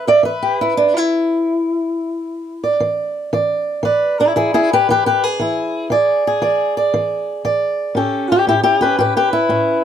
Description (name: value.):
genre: acoustic country blues, solo or duo.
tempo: 117 BPM.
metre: 4/4.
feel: swing 67% on 8ths.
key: E mixolydian.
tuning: A4 = 441 Hz.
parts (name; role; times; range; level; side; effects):
fingerpicked swing-style acoustic guitar; solo; 0.0-9.8 s; A2 to E5; -14 LUFS; equal; none.
room: moderate studio reverb, RT60 0.5 s.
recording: none.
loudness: -14 LUFS.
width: side -9 dB against mid.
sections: 0.0-9.8 A section.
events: none.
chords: 0.0 E7; 7.9 A7.